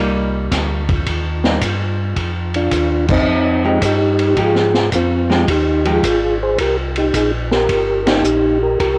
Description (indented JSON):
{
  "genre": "soul jazz organ trio",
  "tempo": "109 BPM",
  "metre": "4/4",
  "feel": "swing 68% on 8ths",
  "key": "C minor",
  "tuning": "A4 = 440 Hz",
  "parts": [
    { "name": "archtop guitar, miked and amplified", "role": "accompaniment", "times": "0.0-8.2 s", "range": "F3 to G4", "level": "-24 LUFS", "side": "equal", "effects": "cassette tape" },
    { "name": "mellow tonewheel organ", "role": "bass", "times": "0.0-9.0 s", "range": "G1 to Ab2", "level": "-24 LUFS", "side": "equal", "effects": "slow rotary speaker" },
    { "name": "vintage drum kit", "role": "drums", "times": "0.5-9.0 s", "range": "crash cymbal, hi-hat, kick drum, ride cymbal, snare drum", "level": "-22 LUFS", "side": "equal", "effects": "cassette tape" },
    { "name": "percussive tonewheel organ", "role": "melody", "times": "2.6-9.0 s", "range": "C4 to C5", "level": "-18 LUFS", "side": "equal", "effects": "slow rotary speaker, chorus vibrato, cassette tape" }
  ],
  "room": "light reverb, small room ambience",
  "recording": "home recording on cassette",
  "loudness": "-16 LUFS",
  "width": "mono",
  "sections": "0.0-9.0 A section",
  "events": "band accent 3.0, 8.0",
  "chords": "0.0 Cm7; 2.2 Fm9; 6.6 Cm7"
}